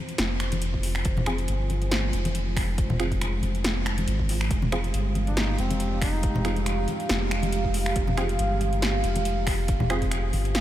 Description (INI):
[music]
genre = deep dubstep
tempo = 139 BPM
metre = 4/4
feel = swing 55% on 16ths, half-time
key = F minor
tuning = A4 = 439 Hz
[part]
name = dark analog pad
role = sustained chords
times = 0.0-10.6 s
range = Ab3 to F5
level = -31 LUFS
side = right 2 dB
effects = chorus
[part]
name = deep house drum kit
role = drums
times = 0.1-10.6 s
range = finger snaps, hi-hat, snare drum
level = -30 LUFS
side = equal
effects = overdrive
[part]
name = soft dub sub bass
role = bass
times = 0.2-10.6 s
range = F1 to Ab1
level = -27 LUFS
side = equal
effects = tube saturation
[part]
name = congas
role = percussion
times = 0.5-10.4 s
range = none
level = -33 LUFS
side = left 2 dB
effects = dub echo
[part]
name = electronic kick drum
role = drums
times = 0.7-10.1 s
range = none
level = -28 LUFS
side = equal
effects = overdrive
[part]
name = filtered dub chord stab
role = stabs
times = 1.3-10.1 s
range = C4 to Ab4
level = -36 LUFS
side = right 2 dB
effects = chorus, dub echo
[part]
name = mellow duduk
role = melody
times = 5.3-6.6 s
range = C4 to Eb4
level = -37 LUFS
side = equal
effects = dub echo
[sound]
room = moderate huge ambient reverb, RT60 7.2 s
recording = dreamy mix soaked in reverb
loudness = -23 LUFS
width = side -12 dB against mid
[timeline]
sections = 0.0-10.6 A section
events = filter sweep on synth stab 0.0-10.6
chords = 0.0 Fm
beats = 0.19 0.62 | 1.05 1.49 1.92 2.35 | 2.78 3.21 3.64 4.08 | 4.51 4.94 5.37 5.80 | 6.23 6.67 7.10 7.53 | 7.96 8.39 8.82 9.26 | 9.69 10.12 10.55